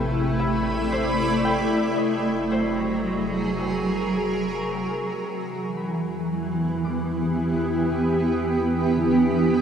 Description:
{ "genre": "ambient", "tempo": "56 BPM", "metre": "3/4", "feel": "straight", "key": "unclear", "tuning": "A4 = 442 Hz", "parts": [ { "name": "granular cloud pad", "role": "sustained chords", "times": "0.0-9.6 s", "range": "E3 to B5", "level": "-22 LUFS", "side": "right 1 dB", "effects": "built-in reverb" }, { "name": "concert harp", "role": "arpeggios", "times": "0.0-9.6 s", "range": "D3 to D6", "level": "-34 LUFS", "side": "left 2 dB", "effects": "diffuse ambient delay" }, { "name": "round analog bass", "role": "bass", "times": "0.0-9.6 s", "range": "F#1 to E2", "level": "-36 LUFS", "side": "equal", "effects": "tube saturation" }, { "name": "organ-like drone", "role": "drone", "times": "0.0-5.4 s", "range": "C3", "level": "-33 LUFS", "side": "left 1 dB", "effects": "ensemble chorus, built-in reverb" } ], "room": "wet huge ambient reverb, RT60 7.5 s", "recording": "lossy compression artefacts", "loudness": "-21 LUFS", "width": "side -8 dB against mid", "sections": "0.0-5.2 A section; 5.2-9.6 B section", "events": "fade-out on analog synth bass 0.0-5.2", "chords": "0.0 A7sus4; 2.0 F#; 5.2 Em7" }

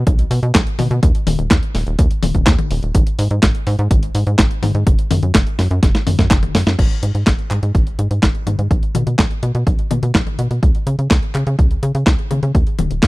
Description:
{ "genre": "italo disco", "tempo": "125 BPM", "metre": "4/4", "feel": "straight", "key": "G# minor", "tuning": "A4 = 441 Hz", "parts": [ { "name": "tight sequencer bass", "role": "bass", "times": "0.0-13.1 s", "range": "D#1 to C#3", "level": "-18 LUFS", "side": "equal", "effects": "none" }, { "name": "clean 12-bit digital drum machine", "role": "drums", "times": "0.1-13.1 s", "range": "crash cymbal, handclaps, hi-hat, snare drum, toms", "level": "-18 LUFS", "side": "left 1 dB", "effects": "none" }, { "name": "electronic kick drum", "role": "drums", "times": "0.1-13.1 s", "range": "none", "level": "-16 LUFS", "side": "equal", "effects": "none" } ], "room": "little or no reverb", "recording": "dry, close 1970s-style studio recording", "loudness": "-14 LUFS", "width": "side -20 dB against mid", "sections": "0.0-6.8 A section; 6.8-13.1 B section", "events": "drum fill 5.8-6.8", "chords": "none" }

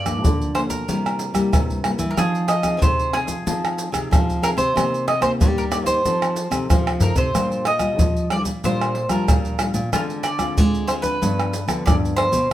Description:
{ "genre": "samba and choro", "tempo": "93 BPM", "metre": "4/4", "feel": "straight", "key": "C minor", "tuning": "A4 = 440 Hz", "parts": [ { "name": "bowl-back mandolin", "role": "melody", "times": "0.0-12.5 s", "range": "F4 to Eb5", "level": "-24 LUFS", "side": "right 1 dB", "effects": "none" }, { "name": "nylon-string guitar", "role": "accompaniment", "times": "0.0-12.5 s", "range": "G2 to A4", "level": "-27 LUFS", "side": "left 2 dB", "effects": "none" }, { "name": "nylon-string guitar", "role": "bass", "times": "0.0-12.5 s", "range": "G2 to Ab3", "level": "-25 LUFS", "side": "equal", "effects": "none" }, { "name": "maracas, surdo, pandeiro and tamborim", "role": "percussion", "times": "0.1-12.5 s", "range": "none", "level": "-21 LUFS", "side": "equal", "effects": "none" } ], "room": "moderate studio reverb, RT60 0.8 s", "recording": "minimal, uncompressed stereo recording", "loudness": "-18 LUFS", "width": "side -13 dB against mid", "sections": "0.0-12.5 A section", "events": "drum fill 6.9-7.3", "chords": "0.0 Gm7; 0.9 C7; 2.2 Fm7; 4.8 Cm7; 6.1 F7; 7.3 Bb6; 9.9 Dm7b5; 11.2 G7" }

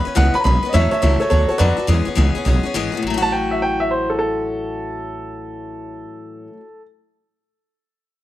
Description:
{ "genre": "rockabilly", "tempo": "208 BPM", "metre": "4/4", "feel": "swing 64% on 8ths", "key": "A major", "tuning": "A4 = 440 Hz", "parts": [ { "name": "warm upright piano", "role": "melody", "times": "0.0-6.8 s", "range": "A4 to B5", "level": "-21 LUFS", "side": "right 1 dB", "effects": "none" }, { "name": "picked steel-string acoustic guitar", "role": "accompaniment", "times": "0.0-6.7 s", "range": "A2 to B4", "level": "-23 LUFS", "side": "left 4 dB", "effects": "none" }, { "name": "upright bass", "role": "bass", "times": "0.0-6.0 s", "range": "G#1 to F2", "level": "-18 LUFS", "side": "right 1 dB", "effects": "none" } ], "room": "light reverb", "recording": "none", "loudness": "-16 LUFS", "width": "side -14 dB against mid", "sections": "0.7-3.0 A section; 3.0-5.3 B section", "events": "none", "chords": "0.0 E6; 0.7 A6; 1.3 D6; 1.9 E6; 3.0 A6" }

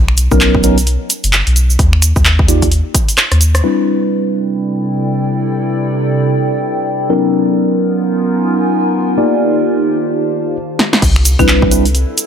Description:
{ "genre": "UK garage, two-step garage", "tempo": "130 BPM", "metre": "4/4", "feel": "swing 60% on 16ths", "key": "unclear", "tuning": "A4 = 442 Hz", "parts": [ { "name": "soft dub sub bass", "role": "bass", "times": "0.0-3.6, 11.0-12.1 s", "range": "F#1 to Eb2", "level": "-12 LUFS", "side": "equal", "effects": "none" }, { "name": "punchy analog drum machine", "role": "drums", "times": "0.1-3.6, 10.8-12.3 s", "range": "claves, crash cymbal, finger snaps, handclaps, hi-hat, rim click, snare drum", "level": "-15 LUFS", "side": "equal", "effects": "none" }, { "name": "cabasa", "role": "percussion", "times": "0.2-3.6, 11.0-12.3 s", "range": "none", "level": "-19 LUFS", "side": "right 3 dB", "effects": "none" }, { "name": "mellow tine electric piano", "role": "stabs", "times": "0.3-11.8 s", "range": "F#3 to D5", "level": "-15 LUFS", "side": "equal", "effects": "phaser, ping-pong delay" }, { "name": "electronic kick drum", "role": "drums", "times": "0.3-3.1, 11.0-11.7 s", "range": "none", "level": "-14 LUFS", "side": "equal", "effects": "overdrive" }, { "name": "warbly tape-like pad", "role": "texture", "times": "4.6-12.3 s", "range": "C3 to Ab5", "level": "-17 LUFS", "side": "equal", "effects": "chorus, built-in reverb, phaser, sidechain pumping" } ], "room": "light reverb", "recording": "none", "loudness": "-11 LUFS", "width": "side -8 dB against mid", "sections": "0.0-3.6 A section; 3.6-11.0 B section; 11.0-12.3 C section", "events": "drum fill 3.2-3.6, 10.8; band accent 3.5; drop 11.0-12.3", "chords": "0.0 Bmaj9; 1.8 N.C.; 3.6 Cmaj9; 7.1 Bmaj9; 9.2 Ebmaj9; 11.0 Cmaj9" }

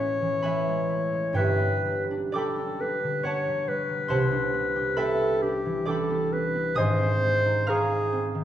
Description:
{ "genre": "classical, impressionist duo for clarinet and harp", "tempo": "58-70 BPM", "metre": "3/4", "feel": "rubato", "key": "unclear", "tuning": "A4 = 440 Hz", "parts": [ { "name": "warm clarinet", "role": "melody", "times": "0.0-8.3 s", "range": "G4 to C#5", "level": "-26 LUFS", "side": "left 1 dB", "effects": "none" }, { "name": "concert harp", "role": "accompaniment", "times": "0.0-8.4 s", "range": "G1 to F6", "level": "-26 LUFS", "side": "right 1 dB", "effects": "none" } ], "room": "wet recital hall reverb, RT60 1.6 s", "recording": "heard from further back in the room", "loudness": "-23 LUFS", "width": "side -11 dB against mid", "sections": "0.0-8.4 A section", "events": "none", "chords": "0.0 Amaj9; 1.4 Gmaj9; 4.1 Cmaj9; 6.8 Abmaj7" }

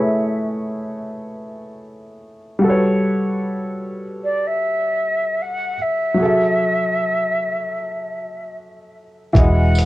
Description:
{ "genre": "lo-fi hip hop", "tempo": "76 BPM", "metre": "4/4", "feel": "swing 58% on 16ths", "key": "unclear", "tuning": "A4 = 437 Hz", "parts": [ { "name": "mellow concert flute", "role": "melody", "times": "0.0-9.9 s", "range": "D5 to F#5", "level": "-21 LUFS", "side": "equal", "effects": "low-pass filter" }, { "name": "felt-muted upright piano", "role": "accompaniment", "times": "0.0-9.9 s", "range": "E3 to E5", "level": "-20 LUFS", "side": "equal", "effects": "low-pass filter" }, { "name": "vintage muted fingered electric bass", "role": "bass", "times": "9.3-9.9 s", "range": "E1", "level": "-15 LUFS", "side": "equal", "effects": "none" }, { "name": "lo-fi sampler-style drum kit", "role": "drums", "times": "9.3-9.9 s", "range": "hi-hat, kick drum", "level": "-15 LUFS", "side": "equal", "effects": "none" }, { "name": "tambourine", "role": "percussion", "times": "9.7-9.9 s", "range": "none", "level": "-31 LUFS", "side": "right 4 dB", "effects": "none" } ], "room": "moderate small room reverb, RT60 0.6 s", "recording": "worn, warbling old tape, cassette tape, warbly pitch drift", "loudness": "-17 LUFS", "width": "side -17 dB against mid", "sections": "0.0-9.3 A section", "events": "filter sweep 0.0-9.3", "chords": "0.0 Amaj9; 2.6 Gmaj9#11; 6.2 F#m7; 9.3 Emaj9" }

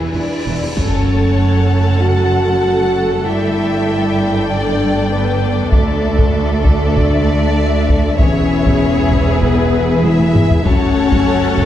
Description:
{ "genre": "cinematic, epic orchestral film score", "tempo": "97 BPM", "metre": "4/4", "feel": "straight", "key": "F# minor", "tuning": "A4 = 440 Hz", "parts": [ { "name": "warm symphonic violin section", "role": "second line", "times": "0.0-11.7 s", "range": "G#4 to A5", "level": "-25 LUFS", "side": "left 2 dB", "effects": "none" }, { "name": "rich symphonic viola section", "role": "accompaniment", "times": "0.0-11.7 s", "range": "E3 to A4", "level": "-24 LUFS", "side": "right 3 dB", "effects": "none" }, { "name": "warm symphonic cello section", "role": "bass", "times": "0.0-11.7 s", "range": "D2 to G2", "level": "-20 LUFS", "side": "right 2 dB", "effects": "none" }, { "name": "cymbal swell and impact", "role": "sound effects", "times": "0.0-3.3 s", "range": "none", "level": "-24 LUFS", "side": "equal", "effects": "none" }, { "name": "rich symphonic violin section", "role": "melody", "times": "0.1-11.7 s", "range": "A4 to F#5", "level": "-24 LUFS", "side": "left 3 dB", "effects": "none" }, { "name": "dark French horn section", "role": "sustained chords", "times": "0.1-11.7 s", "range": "A3 to F#4", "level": "-19 LUFS", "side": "left 3 dB", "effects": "none" }, { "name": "rich symphonic double bass section", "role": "bass", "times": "0.2-11.7 s", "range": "E1 to D2", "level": "-19 LUFS", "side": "right 2 dB", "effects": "none" }, { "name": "warm symphonic string section", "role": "sustained chords", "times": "0.8-11.7 s", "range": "A3 to G5", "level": "-23 LUFS", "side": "left 1 dB", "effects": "none" }, { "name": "taiko ensemble", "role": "drums", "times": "0.8-11.7 s", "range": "none", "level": "-16 LUFS", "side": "equal", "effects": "none" } ], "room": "moderate scoring stage reverb, RT60 1.5 s", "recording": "dark, warm production", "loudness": "-12 LUFS", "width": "side -11 dB against mid", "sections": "0.8-11.7 A section", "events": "cymbal swell 0.0-0.8; impact 0.8-3.3; drum fill 10.0-10.7", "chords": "0.0 E; 0.8 F#m; 3.3 Gsus2; 5.7 Dsus2; 8.2 E; 10.7 F#m" }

